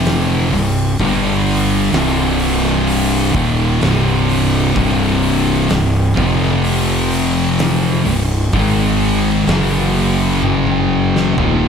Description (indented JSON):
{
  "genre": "stoner and doom metal",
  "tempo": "64 BPM",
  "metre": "4/4",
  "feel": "straight",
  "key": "C minor",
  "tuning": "A4 = 440 Hz",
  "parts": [
    { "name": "thick fuzz guitar", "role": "riff", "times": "0.0-11.7 s", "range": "C2 to Ab3", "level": "-18 LUFS", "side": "left 8 dB", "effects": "distortion" },
    { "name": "thick fuzz guitar", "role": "riff", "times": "0.0-11.7 s", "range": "C2 to Ab3", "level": "-20 LUFS", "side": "right 9 dB", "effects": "distortion" },
    { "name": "thick fuzz guitar", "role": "riff", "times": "0.0-11.7 s", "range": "C2 to Ab3", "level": "-19 LUFS", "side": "right 1 dB", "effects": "distortion" },
    { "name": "fuzz fingered electric bass", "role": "bass", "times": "0.0-11.7 s", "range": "C1 to Ab1", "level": "-19 LUFS", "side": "right 1 dB", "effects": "overdrive" },
    { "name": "oversized low-tuned drum kit", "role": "drums", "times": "0.1-11.6 s", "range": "hi-hat, kick drum, snare drum, toms", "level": "-22 LUFS", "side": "equal", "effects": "none" }
  ],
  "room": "studio ambience",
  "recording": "none",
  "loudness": "-13 LUFS",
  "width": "side -7 dB against mid",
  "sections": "0.0-11.7 A section",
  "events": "drum fill 10.4-11.7",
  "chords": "0.0 F5; 0.5 C5; 1.0 G5; 1.9 Cm; 6.2 F5; 8.1 C5; 8.5 Ab5; 9.5 F#5"
}